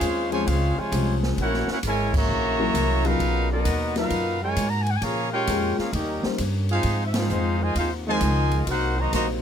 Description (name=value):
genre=jazz, big band swing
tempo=132 BPM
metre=4/4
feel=swing 67% on 8ths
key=Ab major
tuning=A4 = 438 Hz
part: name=clear trumpet section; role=melody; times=0.0-9.3 s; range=B3 to Bb5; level=-26 LUFS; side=equal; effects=none
part: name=clear trombone section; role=second line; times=0.0-9.3 s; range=A#2 to A#4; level=-29 LUFS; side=equal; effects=none
part: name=picked steel-string acoustic guitar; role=accompaniment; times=0.0-9.4 s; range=Gb2 to G4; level=-36 LUFS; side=left 4 dB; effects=none
part: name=upright bass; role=bass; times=0.0-9.4 s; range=Ab1 to Bb2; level=-25 LUFS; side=right 1 dB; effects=none
part: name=open jazz drum kit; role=drums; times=0.0-9.3 s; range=crash cymbal, hi-hat, kick drum, ride cymbal, snare drum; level=-32 LUFS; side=equal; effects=none
part: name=dark concert grand piano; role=accompaniment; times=0.3-9.4 s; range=Cb3 to C5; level=-28 LUFS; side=left 5 dB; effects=none
room=little or no reverb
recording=close, detailed microphones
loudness=-21 LUFS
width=side -8 dB against mid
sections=0.0-9.4 A section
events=band accent 2.1, 7.1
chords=0.0 Dbmaj7; 1.4 Gb7; 3.2 Bmaj7; 5.0 Bbm7; 5.9 Eb7; 6.8 Ab6; 8.7 Cm7b5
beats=0.01 0.47 0.92 | 1.38 1.83 2.29 2.74 | 3.20 3.65 4.11 4.57 | 5.02 5.48 5.94 6.39 | 6.85 7.31 7.76 8.22 | 8.68 9.13